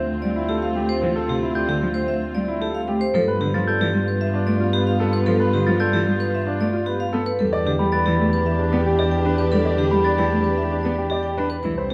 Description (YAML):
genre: classical, minimalist pattern music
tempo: 113 BPM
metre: 4/4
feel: straight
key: unclear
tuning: A4 = 441 Hz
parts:
  - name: vibraphone with hard mallets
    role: melody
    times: 0.0-11.9 s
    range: G4 to G5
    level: -29 LUFS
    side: equal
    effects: none
  - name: warm clarinet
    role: second line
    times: 0.0-11.9 s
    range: E4 to G4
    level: -32 LUFS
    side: equal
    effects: none
  - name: rich studio string section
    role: sustained chords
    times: 0.0-11.9 s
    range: B3 to G4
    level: -32 LUFS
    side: equal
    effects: none
  - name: rich double bass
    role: bass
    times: 0.0-11.9 s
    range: C2 to G2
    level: -26 LUFS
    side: equal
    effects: none
  - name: warm cello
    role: accompaniment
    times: 0.2-11.9 s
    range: C3 to D4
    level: -28 LUFS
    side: equal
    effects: none
  - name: bright baby grand piano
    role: arpeggios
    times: 0.4-11.9 s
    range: D4 to D5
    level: -30 LUFS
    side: equal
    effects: none
  - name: glockenspiel with rubber mallets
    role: arpeggios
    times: 1.6-10.2 s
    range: B5 to A6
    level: -32 LUFS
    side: equal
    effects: none
room: wet recital hall reverb, RT60 1.7 s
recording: dark, warm production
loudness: -21 LUFS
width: mono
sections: 0.0-11.9 A section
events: none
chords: 0.0 Dm9; 3.1 G9; 7.4 Em7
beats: 0.49 | 1.02 1.55 2.08 2.62 | 3.15 3.68 4.21 4.74 | 5.27 5.80 6.33 6.86 | 7.39 7.92 8.46 8.99 | 9.52 10.05 10.58 11.11 | 11.64